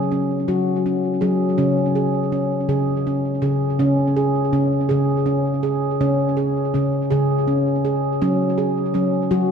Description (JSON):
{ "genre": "world meditative, meditative tuned percussion", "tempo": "54 BPM (dotted quarters)", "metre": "6/8", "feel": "straight", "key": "unclear", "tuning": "A4 = 441 Hz", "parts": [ { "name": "handpan", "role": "solo", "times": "0.0-9.5 s", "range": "C#3 to G#4", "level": "-18 LUFS", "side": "equal", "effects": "ping-pong delay" } ], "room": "wet echo chamber reverb, RT60 2.5 s", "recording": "lossy compression artefacts", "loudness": "-18 LUFS", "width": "side -6 dB against mid", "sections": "0.0-3.8 A section; 3.8-9.5 B section", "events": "none", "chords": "0.0 F#5; 1.6 C#5; 8.2 F#5", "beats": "0.48 | 1.58 2.69 | 3.79 4.90 | 6.00 7.11 | 8.21 9.31" }